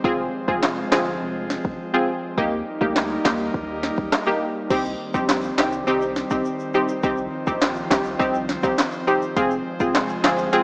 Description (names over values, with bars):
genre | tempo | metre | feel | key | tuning
dancehall | 103 BPM | 4/4 | straight | C minor | A4 = 440 Hz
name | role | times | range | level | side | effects
punchy chord stab | accompaniment | 0.0-10.6 s | Bb3 to Ab4 | -22 LUFS | equal | chorus, sidechain pumping
airy breathy pad | sustained chords | 0.0-10.6 s | Eb3 to Eb4 | -28 LUFS | equal | chorus, sidechain pumping
warm sub bass | bass | 0.0-10.6 s | F1 to Eb2 | -36 LUFS | equal | none
afro-pop drum kit | drums | 0.0-10.6 s | crash cymbal, handclaps, hi-hat, kick drum, rim click, snare drum | -23 LUFS | equal | none
egg shaker and timbales | percussion | 4.7-10.6 s | none | -36 LUFS | equal | none
room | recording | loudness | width
moderate lush hall reverb, RT60 2.0 s | worn, warbling old tape, cassette tape, warbly pitch drift, small speaker sound | -20 LUFS | side -32 dB against mid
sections
0.0-4.7 A section; 4.7-10.6 B section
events
none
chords
0.0 Fm; 2.4 Eb; 4.7 Cm; 9.4 Fm